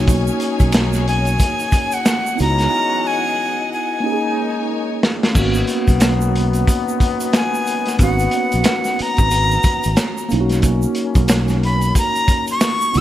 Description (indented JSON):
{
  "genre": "R&B, neo-soul",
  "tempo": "91 BPM",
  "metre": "4/4",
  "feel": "swing 59% on 16ths",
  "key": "G# minor",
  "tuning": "A4 = 441 Hz",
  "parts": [
    { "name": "mellow tine electric piano", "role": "accompaniment", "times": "0.0-13.0 s", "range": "A#3 to G#4", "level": "-22 LUFS", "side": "right 2 dB", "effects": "medium stereo tremolo" },
    { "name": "warm studio string section", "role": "sustained chords", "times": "0.0-5.3 s", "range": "E3 to G#5", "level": "-29 LUFS", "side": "left 2 dB", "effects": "none" },
    { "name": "warm trombone section", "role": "stabs", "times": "0.0-13.0 s", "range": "D#3 to F#4", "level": "-27 LUFS", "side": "left 8 dB", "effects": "none" },
    { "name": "fretless electric bass", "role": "bass", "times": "0.0-13.0 s", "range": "G#1 to C#2", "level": "-18 LUFS", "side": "equal", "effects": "none" },
    { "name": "crunchy breakbeat drum kit", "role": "drums", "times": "0.1-13.0 s", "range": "crash cymbal, hi-hat, kick drum, snare drum", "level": "-18 LUFS", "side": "equal", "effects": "none" },
    { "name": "egg shaker and finger snaps", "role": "percussion", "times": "0.1-13.0 s", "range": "none", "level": "-31 LUFS", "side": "right 6 dB", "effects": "none" },
    { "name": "breathy bright jazz flute", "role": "melody", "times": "1.1-13.0 s", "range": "F#5 to E6", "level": "-20 LUFS", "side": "left 1 dB", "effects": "none" }
  ],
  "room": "light reverb, small room ambience",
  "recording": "bright 1980s-style digital production",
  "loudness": "-15 LUFS",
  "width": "side -13 dB against mid",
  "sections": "0.0-5.4 A section; 5.4-13.0 A section",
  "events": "break 2.7-5.4; drum fill 4.7-5.4",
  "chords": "0.0 Bmaj9; 2.4 C#m11; 4.0 D#7sus4; 5.4 G#m11; 10.3 Bmaj9"
}